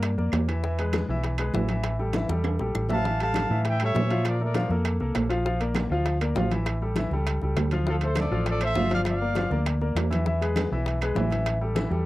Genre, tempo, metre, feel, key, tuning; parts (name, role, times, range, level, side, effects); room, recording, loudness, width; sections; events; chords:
latin, salsa; 199 BPM; 4/4; straight; A4 = 442 Hz
clear concert grand piano; accompaniment; 0.0-12.1 s; E3 to F5; -29 LUFS; left 2 dB
hollow-body short-scale fingered electric bass; bass; 0.0-12.1 s; G1 to Bb2; -27 LUFS; equal
bongos; percussion; 0.0-12.1 s; -35 LUFS; left 6 dB
claves; percussion; 0.0-11.6 s; -40 LUFS; right 5 dB
congas; percussion; 0.0-12.1 s; -33 LUFS; left 1 dB
timbales; percussion; 0.0-11.9 s; -33 LUFS; right 6 dB
clear trumpet section; melody; 2.9-4.7, 7.9-9.6 s; F4 to A5; -29 LUFS; equal
light reverb; dry, close 1970s-style studio recording; -23 LUFS; side -17 dB against mid
0.0-7.9 A section; 7.9-12.1 A section
drum fill 2.3-3.0
0.0 Gm7; 0.6 E; 1.8 A7(no3); 4.3 Bbmaj7; 5.5 Bbmaj7#11; 6.7 A7; 7.9 Dm7; 9.1 Gm7; 10.3 E; 11.5 A7(no3)